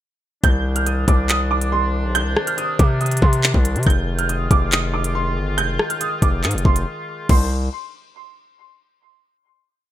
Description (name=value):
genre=hip hop, drill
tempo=140 BPM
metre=4/4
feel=half-time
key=C minor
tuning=A4 = 440 Hz
part: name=dark grand piano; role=melody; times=0.4-7.5 s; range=C6 to G6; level=-24 LUFS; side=right 4 dB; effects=analog chorus, ping-pong delay
part: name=clear woodwind section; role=sustained chords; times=0.4-7.5 s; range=C3 to C5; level=-29 LUFS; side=left 3 dB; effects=none
part: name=distorted 808-style bass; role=bass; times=0.4-7.7 s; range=F1 to C3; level=-20 LUFS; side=equal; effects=distortion
part: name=drill drum kit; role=drums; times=0.4-7.4 s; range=crash cymbal, handclaps, hi-hat, kick drum, rim click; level=-18 LUFS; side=equal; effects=none
room=digital ambience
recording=bright 1980s-style digital production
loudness=-17 LUFS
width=side -12 dB against mid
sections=0.4-7.3 hook; 7.3-9.0 final chord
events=break 6.9-7.3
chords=0.4 Cmadd9; 3.9 Fm7; 7.3 Cmadd9